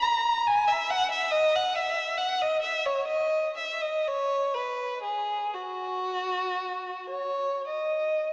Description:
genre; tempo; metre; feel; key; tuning
classical, free, expressive piece for unaccompanied violin; 26-47 BPM (dotted quarters); 6/8; rubato; unclear; A4 = 440 Hz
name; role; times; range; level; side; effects
rich violin; solo; 0.0-8.3 s; F#4 to A#5; -25 LUFS; equal; none
room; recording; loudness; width
wet church reverb, RT60 2.9 s; small speaker sound; -25 LUFS; side -28 dB against mid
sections
0.0-8.3 A section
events
none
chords
none

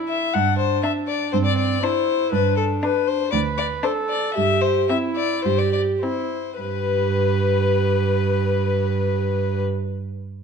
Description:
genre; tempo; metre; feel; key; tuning
quick classical-period movement for string quartet; 101-122 BPM; 4/4; straight; G major; A4 = 439 Hz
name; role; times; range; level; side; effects
rich violin; second line; 0.0-9.6 s; C4 to B4; -28 LUFS; left 2 dB; none
warm viola; accompaniment; 0.0-9.6 s; C4 to B4; -25 LUFS; right 3 dB; none
rich violin; melody; 0.1-9.6 s; A4 to F#5; -23 LUFS; left 9 dB; none
warm cello; bass; 0.3-9.6 s; D2 to G2; -23 LUFS; right 5 dB; none
room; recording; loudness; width
moderate recital hall reverb, RT60 1.5 s; dark, warm production; -19 LUFS; side -6 dB against mid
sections
0.0-6.6 A section; 6.6-10.4 B section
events
slowing down 1.3-6.6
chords
0.3 Cadd9/G; 2.3 G; 4.4 C/G; 6.6 G

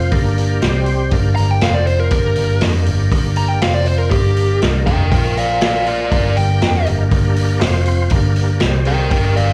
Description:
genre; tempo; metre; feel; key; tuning
blues rock power trio and southern rock; 120 BPM; 4/4; straight; G minor; A4 = 441 Hz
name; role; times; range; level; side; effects
overdriven tonewheel organ; sustained chords; 0.0-9.5 s; F3 to C5; -26 LUFS; equal; slow rotary speaker, chorus vibrato
vintage muted picked electric bass; bass; 0.0-9.5 s; F1 to F2; -18 LUFS; equal; none
vintage drum kit; drums; 0.1-9.5 s; hi-hat, kick drum, snare drum; -22 LUFS; equal; none
smooth overdriven lead guitar; second line; 1.4-9.5 s; G4 to Bb5; -21 LUFS; equal; plate reverb, slapback echo
room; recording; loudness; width
light reverb; live gig heard through the venue's PA, club reverb; -16 LUFS; mono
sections
0.0-9.5 A section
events
lead electric guitar solo 0.0-9.5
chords
0.1 Gm; 0.6 C5; 1.1 Gm; 1.6 F5; 2.1 Gm; 3.6 F5; 4.1 Gm; 5.1 Bb5; 6.1 Gm; 7.6 F5; 8.1 Gm; 8.6 C5

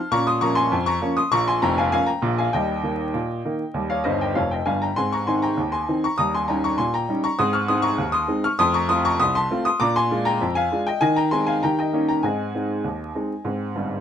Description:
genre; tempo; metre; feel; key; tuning
ragtime piano; 99 BPM; 2/4; straight; Ab major; A4 = 440 Hz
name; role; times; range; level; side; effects
clear upright piano; solo; 0.0-14.0 s; F1 to F6; -20 LUFS; left 1 dB; none
room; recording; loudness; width
light reverb; dark, warm production, vinyl crackle; -20 LUFS; side -9 dB against mid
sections
0.0-14.0 A section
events
upright piano fill 4.1-5.0, 13.8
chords
0.1 Bbm; 5.0 Ab; 8.6 F; 9.8 Bb7; 11.0 Ab/Eb; 11.6 Eb7; 12.2 Ab

